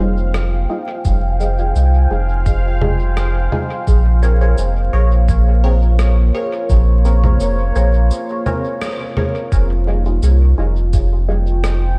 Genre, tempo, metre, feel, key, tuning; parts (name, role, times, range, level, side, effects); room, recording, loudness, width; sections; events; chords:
ambient dub; 85 BPM; 4/4; swing 53% on 16ths; F minor; A4 = 439 Hz
deep dark ambient pad; sustained chords; 0.0-12.0 s; Bb3 to Ab5; -28 LUFS; equal; chorus, built-in reverb
filtered dub chord stab; stabs; 0.0-11.4 s; G3 to Db5; -27 LUFS; equal; phaser, lush chorus, dub echo
warm sub bass; bass; 0.0-12.0 s; F1 to C2; -16 LUFS; equal
bubbling stepped-filter texture; texture; 0.0-9.5 s; F5; -34 LUFS; equal; chorus, built-in reverb
electronic rim click, cabasa and congas; drums; 0.3-11.8 s; -27 LUFS; equal; dub echo
electronic kick drum; drums; 1.1-11.1 s; -19 LUFS; equal
light reverb; vinyl crackle; -16 LUFS; mono
0.0-9.5 A section; 9.5-12.0 B section
break 8.1-9.5; band accent 8.8-9.2
0.0 Fm9; 3.9 Bbm9; 9.5 Fm9